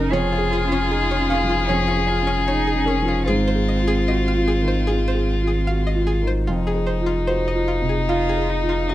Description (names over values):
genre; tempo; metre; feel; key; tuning
neoclassical piano and strings; 75 BPM; 4/4; rubato; unclear; A4 = 438 Hz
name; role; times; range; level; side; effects
rich violin; melody; 0.0-8.9 s; Eb4 to Bb4; -24 LUFS; left 5 dB; none
rich cello; second line; 0.0-8.9 s; C4 to F4; -27 LUFS; right 4 dB; none
felt-muted upright piano; accompaniment; 0.0-8.9 s; F2 to F5; -23 LUFS; right 1 dB; none
string-like resonator pluck; arpeggios; 0.0-8.9 s; Db4 to F5; -29 LUFS; left 1 dB; chorus, slapback echo
pure sine sub bass; bass; 0.0-8.9 s; F1 to Ab1; -23 LUFS; equal; none
room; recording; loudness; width
light reverb; none; -18 LUFS; side -14 dB against mid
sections
0.0-8.9 A section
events
none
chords
0.1 Db/F; 3.3 Ab6; 6.5 Fm7